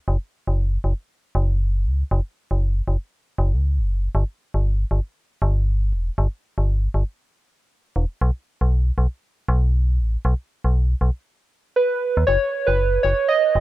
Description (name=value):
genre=IDM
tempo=118 BPM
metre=4/4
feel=swing 56% on 16ths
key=unclear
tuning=A4 = 440 Hz
part: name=metallic FM bass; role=bass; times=0.1-13.6 s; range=E1 to D#2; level=-19 LUFS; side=equal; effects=none
part: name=warbly lo-fi synth keys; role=melody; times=11.8-13.6 s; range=B4 to D#5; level=-18 LUFS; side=right 2 dB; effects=chorus, vintage 12-bit sampler grit
room=little or no reverb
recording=none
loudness=-20 LUFS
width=side -17 dB against mid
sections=0.0-12.3 A section; 12.3-13.6 B section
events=none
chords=0.0 F#5; 4.1 N.C.; 12.3 F#5